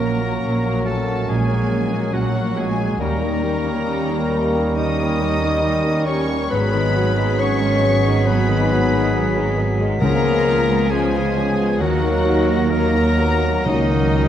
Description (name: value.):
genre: classical, slow romantic movement for symphony orchestra.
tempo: 68 BPM.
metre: 4/4.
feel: rubato.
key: F# major.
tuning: A4 = 440 Hz.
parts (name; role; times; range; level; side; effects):
rich symphonic violin section; melody; 0.0-14.3 s; D#5 to D#6; -29 LUFS; left 4 dB; none.
clear oboe; second line; 0.0-14.3 s; D#4 to D#5; -30 LUFS; equal; none.
hollow concert flute; second line; 0.0-14.3 s; C#6 to B6; -33 LUFS; left 2 dB; none.
mellow clarinet; second line; 0.0-14.3 s; D#4 to D#5; -27 LUFS; left 1 dB; none.
warm symphonic violin section; second line; 0.0-14.3 s; G#3 to F#4; -31 LUFS; left 3 dB; none.
clear symphonic viola section; accompaniment; 0.0-14.3 s; C#3 to A#3; -28 LUFS; right 1 dB; none.
mellow bassoon; accompaniment; 0.0-14.3 s; E#3 to G3; -28 LUFS; right 1 dB; none.
dark trombone section; sustained chords; 0.0-14.3 s; E#3 to C#4; -29 LUFS; right 4 dB; none.
warm French horn section; sustained chords; 0.0-14.3 s; D#3 to D#4; -25 LUFS; left 3 dB; none.
concert harp; arpeggios; 0.0-14.3 s; G#2 to D#6; -27 LUFS; left 5 dB; none.
clear trumpet; stabs; 0.0-14.3 s; G#4 to A#4; -28 LUFS; right 1 dB; none.
clear symphonic double bass section; bass; 0.0-14.3 s; G#1 to D#2; -24 LUFS; right 2 dB; none.
rich symphonic cello section; bass; 0.0-14.3 s; C#2 to A#2; -24 LUFS; right 3 dB; none.
timpani; percussion; 10.0-14.3 s; C#3; -25 LUFS; left 1 dB; none.
room: moderate scoring stage reverb, RT60 1.7 s.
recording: dark, warm production.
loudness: -16 LUFS.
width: side -10 dB against mid.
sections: 0.0-14.3 A section.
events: none.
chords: 0.0 F#/A#; 3.0 D#7; 6.5 G#m7; 10.0 C#7; 11.8 D#m; 13.7 F#/C#.